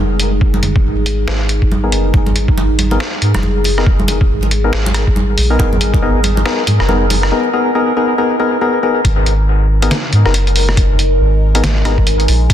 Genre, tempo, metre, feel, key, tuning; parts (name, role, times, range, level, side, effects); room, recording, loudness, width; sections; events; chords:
deep dubstep; 139 BPM; 4/4; swing 60% on 16ths, half-time; G# minor; A4 = 440 Hz
overtone-sweeping drone; sustained chords; 0.0-12.5 s; G#3 to A#4; -22 LUFS; equal; chorus, built-in reverb
soft dub sub bass; bass; 0.0-12.5 s; F#1 to G#2; -14 LUFS; equal
trip hop sampler-style drum kit; drums; 0.2-12.5 s; hi-hat, rim click, snare drum; -20 LUFS; equal; high-pass filter on hats, high-pass filter on snare
electronic kick drum; drums; 0.4-6.0, 9.0-12.5 s; -14 LUFS; equal
congas; percussion; 0.5-7.2 s; -22 LUFS; right 2 dB; dub echo
percussive organ stab; stabs; 1.8-12.0 s; B3 to A#4; -17 LUFS; left 2 dB; chorus, cassette tape, dub echo
light reverb, digital ambience; dense, heavily limited modern master; -11 LUFS; side -10 dB against mid
0.0-9.0 A section; 9.0-12.5 B section
build-up 0.0-9.0; filter sweep on synth stab 0.0-9.0; filter sweep on synth drone 0.0-9.0; drop 9.0-12.5
0.0 G#madd9